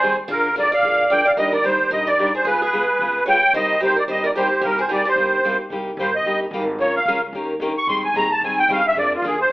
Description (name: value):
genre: acoustic string swing (jazz manouche)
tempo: 221 BPM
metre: 4/4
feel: swing 57% on 8ths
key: C minor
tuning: A4 = 440 Hz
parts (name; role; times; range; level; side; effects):
- musette accordion; melody; 0.0-9.5 s; F4 to Db6; -17 LUFS; equal; none
- picked steel-string acoustic guitar; second line; 0.0-5.6 s; F4 to D5; -24 LUFS; right 1 dB; none
- picked steel-string acoustic guitar; accompaniment; 0.0-9.3 s; C3 to Bb4; -25 LUFS; left 1 dB; none
- upright bass; bass; 0.0-9.5 s; F1 to Bb2; -37 LUFS; equal; none
room: wet studio reverb, RT60 0.8 s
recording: heard from further back in the room, telephone sound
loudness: -16 LUFS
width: side -20 dB against mid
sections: 0.0-5.7 A section; 5.7-9.5 B section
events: accordion solo 5.7-9.5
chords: 0.3 Bb7; 1.4 Ebmaj7; 2.5 Db7#11; 3.5 Cm7; 6.8 Bbm7; 7.3 Eb7; 7.9 Abmaj7; 9.0 Bb7